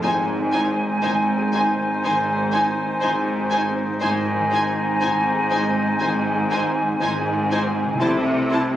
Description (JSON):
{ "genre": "cinematic, emotional film score for orchestra", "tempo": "60 BPM", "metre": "4/4", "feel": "rubato", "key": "unclear", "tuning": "A4 = 441 Hz", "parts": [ { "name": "warm symphonic violin section", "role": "melody", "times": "0.0-8.6 s", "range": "Ab5 to A5", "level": "-28 LUFS", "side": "left 1 dB", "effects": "none" }, { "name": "clear clarinet", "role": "second line", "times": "0.0-8.7 s", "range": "Eb4 to E4", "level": "-28 LUFS", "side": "left 1 dB", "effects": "none" }, { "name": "small flute group", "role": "second line", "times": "0.0-8.6 s", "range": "Ab5 to A5", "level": "-25 LUFS", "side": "equal", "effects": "none" }, { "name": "warm oboe", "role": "second line", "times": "0.0-8.7 s", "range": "C5", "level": "-32 LUFS", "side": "equal", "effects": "none" }, { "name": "warm studio violin section", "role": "second line", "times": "0.0-8.6 s", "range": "C5", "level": "-33 LUFS", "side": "left 4 dB", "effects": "none" }, { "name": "felt-muted upright piano", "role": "accompaniment", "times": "0.0-8.8 s", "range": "C2 to Ab4", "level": "-30 LUFS", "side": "equal", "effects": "none" }, { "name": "warm symphonic viola section", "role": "accompaniment", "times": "0.0-8.6 s", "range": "Eb4 to E4", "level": "-31 LUFS", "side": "right 1 dB", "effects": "none" }, { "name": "warm French horn section", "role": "sustained chords", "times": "0.0-8.8 s", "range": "A3 to E4", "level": "-30 LUFS", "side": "left 3 dB", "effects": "none" }, { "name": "concert harp", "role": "arpeggios", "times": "0.0-8.8 s", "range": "Ab2 to A4", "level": "-34 LUFS", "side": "left 6 dB", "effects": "none" }, { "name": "rich studio double bass section", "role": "bass", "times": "0.0-8.8 s", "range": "Ab1 to C2", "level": "-33 LUFS", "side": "right 3 dB", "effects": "none" }, { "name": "rich symphonic cello section", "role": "bass", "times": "0.0-8.8 s", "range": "Ab2 to C3", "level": "-25 LUFS", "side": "right 1 dB", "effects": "none" }, { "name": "timpani", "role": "percussion", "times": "8.0-8.8 s", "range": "C3", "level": "-35 LUFS", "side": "left 1 dB", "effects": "none" } ], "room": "moderate scoring stage reverb, RT60 1.8 s", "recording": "recorded on a phone in the room, club reverb", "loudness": "-18 LUFS", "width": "side -12 dB against mid", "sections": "0.0-8.8 A section", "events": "none", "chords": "0.0 Ab; 8.0 C6" }